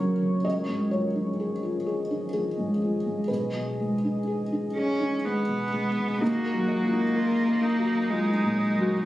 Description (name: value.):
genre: neoclassical piano and strings.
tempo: 63 BPM.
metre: 3/4.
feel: rubato.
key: Eb minor.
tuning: A4 = 440 Hz.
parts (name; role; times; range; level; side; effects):
felt-muted upright piano; accompaniment; 0.0-9.1 s; Cb2 to Gb5; -28 LUFS; left 1 dB; none.
deep dark ambient pad; sustained chords; 0.0-9.1 s; F3 to Eb5; -32 LUFS; equal; chorus, built-in reverb.
rich cello; second line; 4.8-9.0 s; Ab3 to Db4; -25 LUFS; equal; none.
rich viola; accompaniment; 6.2-9.0 s; Eb4 to Gb4; -34 LUFS; right 1 dB; none.
Celtic harp; arpeggios; 6.2-9.1 s; Eb4 to Eb5; -33 LUFS; left 2 dB; tape echo.
clear double bass; bass; 6.2-9.1 s; Eb2; -45 LUFS; left 1 dB; none.
room: light reverb.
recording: recorded on a phone in the room, studio reverb.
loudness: -24 LUFS.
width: side -15 dB against mid.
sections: 0.0-6.2 A section; 6.2-9.1 B section.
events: none.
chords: 0.4 Dbadd9; 3.3 Abm/Cb; 6.2 Ebmadd9.